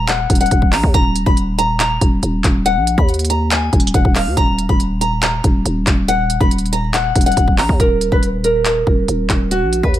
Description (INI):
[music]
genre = hip hop, trap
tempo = 140 BPM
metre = 4/4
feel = half-time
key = Eb minor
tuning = A4 = 439 Hz
[part]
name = flamenco guitar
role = melody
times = 0.0-9.9 s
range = Gb4 to Cb6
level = -18 LUFS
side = equal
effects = none
[part]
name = growling 808-style bass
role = bass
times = 0.0-10.0 s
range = Eb1 to Eb2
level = -18 LUFS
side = equal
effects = none
[part]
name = trap drum kit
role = drums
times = 0.1-10.0 s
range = handclaps, hi-hat, kick drum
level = -16 LUFS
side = equal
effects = none
[sound]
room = digital ambience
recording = none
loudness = -13 LUFS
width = side -13 dB against mid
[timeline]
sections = 0.0-7.8 A section; 7.8-10.0 B section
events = none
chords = 0.0 Eb5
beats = 0.08 0.51 | 0.94 1.37 1.80 2.23 | 2.66 3.08 3.51 3.94 | 4.37 4.80 5.23 5.66 | 6.08 6.51 6.94 7.37 | 7.80 8.23 8.66 9.08 | 9.51 9.94